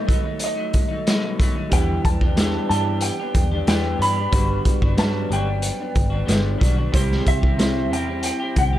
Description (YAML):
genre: indie pop, bedroom pop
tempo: 92 BPM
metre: 4/4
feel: straight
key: E minor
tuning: A4 = 444 Hz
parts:
  - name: mellow electric guitar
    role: melody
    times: 0.0-8.8 s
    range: D#5 to B5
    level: -27 LUFS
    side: equal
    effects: lush chorus, slapback echo
  - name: electric guitar through a small old amp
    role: accompaniment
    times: 0.0-8.8 s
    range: B2 to G4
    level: -26 LUFS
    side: left 2 dB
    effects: analog chorus, vibrato effect
  - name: raw garage drum kit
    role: drums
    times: 0.1-8.7 s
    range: hi-hat, kick drum, snare drum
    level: -21 LUFS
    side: equal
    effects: none
  - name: warm upright piano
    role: accompaniment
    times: 1.7-8.8 s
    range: F#3 to C5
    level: -30 LUFS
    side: right 5 dB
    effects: cassette tape
  - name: vintage muted picked electric bass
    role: bass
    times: 1.7-8.8 s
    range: G1 to G2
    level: -24 LUFS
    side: equal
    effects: none
room: light reverb, small room ambience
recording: none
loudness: -18 LUFS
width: side -13 dB against mid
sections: 0.0-8.8 A section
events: none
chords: 0.0 B7; 1.7 Em7; 4.3 Gmaj7; 6.9 C